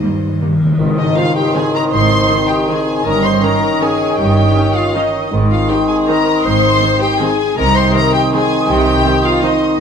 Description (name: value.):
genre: classical, orchestral ballroom waltz.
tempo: 160 BPM.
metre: 3/4.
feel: uneven beats, rubato.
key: Ab major.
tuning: A4 = 442 Hz.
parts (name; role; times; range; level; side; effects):
warm studio violin section; melody; 0.0-9.8 s; C5 to C6; -18 LUFS; left 4 dB; none.
mellow clarinet; second line; 0.0-9.8 s; Eb4 to C5; -22 LUFS; left 1 dB; none.
warm studio violin section; second line; 0.0-9.8 s; Eb4 to Eb5; -23 LUFS; left 5 dB; none.
rich studio viola section; accompaniment; 0.0-9.5 s; Eb3 to Db4; -25 LUFS; right 1 dB; none.
warm studio cello section; bass; 0.0-9.0 s; Eb2 to C3; -20 LUFS; right 2 dB; none.
timpani; percussion; 0.0-0.8 s; Eb3; -17 LUFS; left 2 dB; none.
dark cor anglais; second line; 0.8-9.8 s; C5 to Db5; -26 LUFS; right 5 dB; none.
large flute ensemble; second line; 0.8-9.8 s; Eb6; -24 LUFS; right 4 dB; none.
warm bassoon; accompaniment; 0.8-9.8 s; Eb3; -21 LUFS; right 2 dB; none.
dark French horn section; sustained chords; 0.8-9.8 s; C4 to Eb4; -20 LUFS; left 3 dB; none.
rich studio double bass section; bass; 0.8-9.0 s; G1 to C2; -21 LUFS; right 4 dB; none.
tam-tam; percussion; 0.8-2.3 s; none; -27 LUFS; left 2 dB; none.
room: wet scoring stage reverb, RT60 1.5 s.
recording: none.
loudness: -11 LUFS.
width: side -7 dB against mid.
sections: 0.8-9.8 A section.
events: timpani fill 0.0-0.8; band accent 0.8-1.2.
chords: 0.0 Eb; 0.8 Ab; 3.1 Eb7/G; 5.3 Ab; 7.6 Ab/C.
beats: 0.03 0.42 | 0.78 1.16 1.55 | 1.92 2.30 2.69 | 3.06 3.43 3.82 | 4.18 4.55 4.95 | 5.32 5.69 6.08 | 6.45 6.82 7.21 | 7.58 7.95 8.34 | 8.69 9.05 9.43 | 9.79.